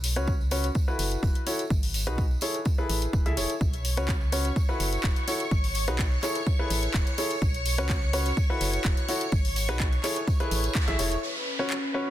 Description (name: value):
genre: piano house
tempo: 126 BPM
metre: 4/4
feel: straight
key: unclear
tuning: A4 = 440 Hz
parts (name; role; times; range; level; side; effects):
- organ-like FM bass; bass; 0.0-11.2 s; E1 to C#2; -29 LUFS; equal; tube saturation, sidechain pumping
- house drum kit; drums; 0.0-11.8 s; handclaps, hi-hat; -33 LUFS; left 3 dB; overdrive
- tambourine; percussion; 0.0-11.2 s; none; -40 LUFS; right 4 dB; none
- clear grand piano; riff; 0.2-12.1 s; C#4 to E5; -31 LUFS; left 1 dB; sidechain pumping, low-pass filter, ping-pong delay
- electronic kick drum; drums; 0.3-10.9 s; none; -26 LUFS; equal; overdrive
- string machine, violins; sustained chords; 3.6-12.1 s; B4 to C#6; -34 LUFS; equal; ensemble chorus, sidechain pumping
- downlifter; sound effects; 11.2-12.1 s; none; -33 LUFS; equal; none
- warbly tape-like pad; texture; 11.4-12.1 s; C#4 to F#5; -34 LUFS; left 2 dB; chorus, built-in reverb, sidechain pumping
room: little or no reverb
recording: dense, heavily limited modern master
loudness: -24 LUFS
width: side -13 dB against mid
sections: 0.0-11.2 A section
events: band accent 10.8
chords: 0.0 Bsus2; 0.8 F#m7; 1.7 G#m7; 2.4 Amaj7; 3.6 Bsus2; 4.6 F#m7; 5.5 G#m7; 6.2 Amaj7; 7.4 Bsus2; 8.4 F#m7; 9.3 G#m7; 10.0 Amaj7; 11.2 Bsus2